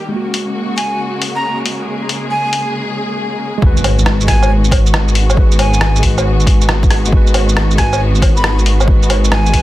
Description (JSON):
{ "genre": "future garage", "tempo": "137 BPM", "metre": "4/4", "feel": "swing 66% on 16ths", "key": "G# minor", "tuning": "A4 = 440 Hz", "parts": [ { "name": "mellow tine electric piano", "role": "accompaniment", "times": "0.0-9.6 s", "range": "G#3 to B4", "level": "-22 LUFS", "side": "right 1 dB", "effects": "medium stereo tremolo, sidechain pumping, dub echo" }, { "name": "rich symphonic string section", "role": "sustained chords", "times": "0.0-9.6 s", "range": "C#3 to G#4", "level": "-22 LUFS", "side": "left 1 dB", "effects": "sidechain pumping" }, { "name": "lo-fi sampler-style drum kit", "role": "drums", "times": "0.3-9.6 s", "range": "hi-hat, rim click, shaker, woodblock", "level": "-18 LUFS", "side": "equal", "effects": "soft clipping on snare" }, { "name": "breathy bright jazz flute", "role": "melody", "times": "0.8-9.6 s", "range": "G#5 to B5", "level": "-22 LUFS", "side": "right 1 dB", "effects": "vintage 12-bit sampler grit, dub echo" }, { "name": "dark detuned saw bass", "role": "bass", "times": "3.6-9.6 s", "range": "G#1", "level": "-14 LUFS", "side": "equal", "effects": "sidechain pumping" }, { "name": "electronic kick drum", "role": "drums", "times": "3.6-9.6 s", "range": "none", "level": "-13 LUFS", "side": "equal", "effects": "none" }, { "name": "impact", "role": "sound effects", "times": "3.6-5.4 s", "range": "none", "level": "-22 LUFS", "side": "equal", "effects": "none" } ], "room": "light reverb, digital ambience", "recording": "dense, heavily limited modern master", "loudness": "-11 LUFS", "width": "side -16 dB against mid", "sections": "0.0-3.6 A section; 3.6-9.6 B section", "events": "break 2.7-3.6; impact 3.6-5.4", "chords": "0.1 F#add9; 3.6 G#m7" }